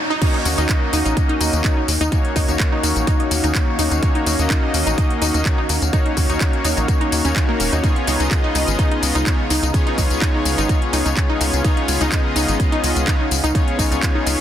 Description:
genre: progressive house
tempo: 126 BPM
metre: 4/4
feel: straight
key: Eb minor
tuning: A4 = 440 Hz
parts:
  - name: wide unison pluck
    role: arpeggios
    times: 0.1-14.3 s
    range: Bb3 to Bb4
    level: -24 LUFS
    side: equal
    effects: vintage 12-bit sampler grit, sidechain pumping, tape echo
  - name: warm analog pad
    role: sustained chords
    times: 0.2-14.4 s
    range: Db3 to F5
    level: -30 LUFS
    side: right 2 dB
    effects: chorus, sidechain pumping
  - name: soft supersaw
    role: stabs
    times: 0.2-14.4 s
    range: Bb3 to Eb5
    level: -23 LUFS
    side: left 2 dB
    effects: sidechain pumping, tape echo
  - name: electronic kick drum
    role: drums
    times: 0.2-14.1 s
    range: none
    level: -18 LUFS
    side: equal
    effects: none
  - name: house drum kit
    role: drums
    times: 0.2-14.4 s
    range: crash cymbal, handclaps, hi-hat, tambourine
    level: -24 LUFS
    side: left 1 dB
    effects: none
  - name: tight sequencer bass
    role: bass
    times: 0.5-14.4 s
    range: Eb1 to Eb2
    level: -21 LUFS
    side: equal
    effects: sidechain pumping
room: light reverb, digital ambience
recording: dense, heavily limited modern master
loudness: -16 LUFS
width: side -10 dB against mid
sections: 0.2-14.4 A section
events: break 0.0; drop 0.2-14.4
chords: 0.2 Ebm7; 7.8 Db7

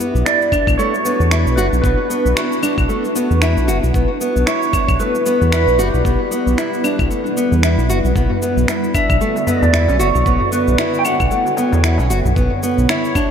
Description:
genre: organic downtempo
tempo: 114 BPM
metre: 4/4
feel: swing 58% on 16ths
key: B minor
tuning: A4 = 439 Hz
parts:
  - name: granular cloud pad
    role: sustained chords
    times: 0.0-13.3 s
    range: D3 to D5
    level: -22 LUFS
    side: equal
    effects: built-in reverb, sidechain pumping
  - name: nylon-string guitar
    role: arpeggios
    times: 0.0-13.3 s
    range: A3 to F#4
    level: -20 LUFS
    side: left 1 dB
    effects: ping-pong delay
  - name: electronic shaker, finger snaps and claves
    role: drums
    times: 0.0-13.3 s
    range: none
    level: -25 LUFS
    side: left 2 dB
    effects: none
  - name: round analog bass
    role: bass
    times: 0.1-12.9 s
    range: F#1 to E2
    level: -16 LUFS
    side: equal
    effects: none
  - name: clean lap steel guitar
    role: melody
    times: 0.3-13.3 s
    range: F#4 to G5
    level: -20 LUFS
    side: right 2 dB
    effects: lush chorus, analog delay
  - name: electronic kick drum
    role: drums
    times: 0.5-13.3 s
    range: none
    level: -19 LUFS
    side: equal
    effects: none
  - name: darbuka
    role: percussion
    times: 8.3-13.3 s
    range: none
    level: -28 LUFS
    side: left 1 dB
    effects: none
room: wet cathedral reverb, RT60 6.7 s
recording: dreamy mix soaked in reverb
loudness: -14 LUFS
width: side -8 dB against mid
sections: 0.0-13.3 A section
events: none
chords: 0.0 Bm; 3.9 Em; 8.2 Bm; 12.4 Em

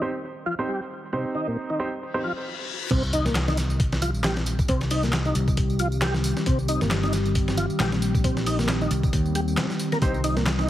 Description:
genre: breakbeat, breaks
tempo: 135 BPM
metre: 4/4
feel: swing 57% on 16ths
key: C minor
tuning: A4 = 439 Hz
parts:
  - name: warbly tape-like pad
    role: sustained chords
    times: 0.0-10.7 s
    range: Eb3 to C5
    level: -30 LUFS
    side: left 1 dB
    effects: chorus, built-in reverb, sidechain pumping
  - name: clear grand piano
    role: stabs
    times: 0.0-2.2, 10.0-10.1 s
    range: C4 to C5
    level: -30 LUFS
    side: right 2 dB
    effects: low-pass filter, tape echo
  - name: tonewheel organ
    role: riff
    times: 0.5-10.7 s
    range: Bb2 to Bb3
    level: -29 LUFS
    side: equal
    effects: chorus vibrato, slow rotary speaker, tube saturation, tape echo
  - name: reverse cymbal and sub drop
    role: sound effects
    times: 2.2-4.7 s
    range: none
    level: -35 LUFS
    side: left 3 dB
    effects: none
  - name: picked electric bass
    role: bass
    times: 2.9-10.7 s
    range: G1 to Eb2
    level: -26 LUFS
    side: equal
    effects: tube saturation
  - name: dusty soul sampler-style drum kit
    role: drums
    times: 2.9-10.7 s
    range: crash cymbal, hi-hat, kick drum, snare drum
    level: -26 LUFS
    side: equal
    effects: small room reverb
  - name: punchy analog drum machine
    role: drums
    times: 2.9-10.7 s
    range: handclaps, ride cymbal, tambourine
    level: -34 LUFS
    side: right 1 dB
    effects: overdrive, small room reverb
room: light reverb, digital ambience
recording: heavily compressed radio sound, multiband compression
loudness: -22 LUFS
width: side -13 dB against mid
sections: 0.0-2.9 A section; 2.9-10.7 B section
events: reverse cymbal 2.2-2.9; stop 2.5-2.9; drop 2.9-10.7; impact 2.9-4.7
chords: 0.0 Cm

